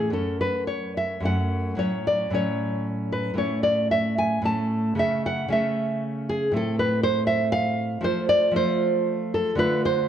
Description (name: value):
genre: romantic piece for solo classical guitar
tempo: 99-124 BPM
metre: 3/4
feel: rubato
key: F# minor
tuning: A4 = 443 Hz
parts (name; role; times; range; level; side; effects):
- nylon-string guitar; solo; 0.0-10.1 s; F#2 to A5; -22 LUFS; equal; none
room: moderate scoring stage reverb, RT60 1.6 s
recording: dark, warm production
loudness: -22 LUFS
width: side -9 dB against mid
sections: 0.1-10.1 A section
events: none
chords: 0.1 F#m; 1.8 F#m/A; 3.4 A; 5.0 A/C#; 6.6 Am; 8.1 F